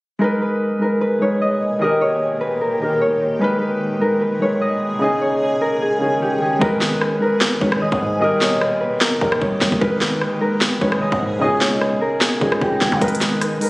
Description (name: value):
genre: hip hop, trap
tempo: 150 BPM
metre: 4/4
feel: half-time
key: G# harmonic minor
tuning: A4 = 439 Hz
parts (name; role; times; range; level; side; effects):
- concert harp; melody; 0.2-13.7 s; G4 to D#5; -20 LUFS; equal; none
- dark concert grand piano; accompaniment; 0.2-13.7 s; C#3 to B4; -20 LUFS; equal; none
- granular cloud pad; sustained chords; 1.1-13.7 s; A#2 to G#4; -28 LUFS; equal; built-in reverb
- growling 808-style bass; bass; 6.6-13.6 s; D#1 to C#3; -25 LUFS; equal; none
- trap drum kit; drums; 6.6-13.7 s; hi-hat, kick drum, rim click, snare drum; -20 LUFS; equal; none
room: light reverb, digital ambience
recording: recorded on a phone in the room, studio reverb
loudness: -16 LUFS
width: side -22 dB against mid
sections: 0.2-6.6 A section; 6.6-13.7 B section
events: hi-hats muted 6.6-13.0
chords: 0.2 G#madd9; 1.8 D#; 3.4 G#madd9; 5.0 C#sus2; 6.6 G#madd9; 8.2 D#; 9.8 G#madd9; 11.4 C#sus2; 13.0 G#madd9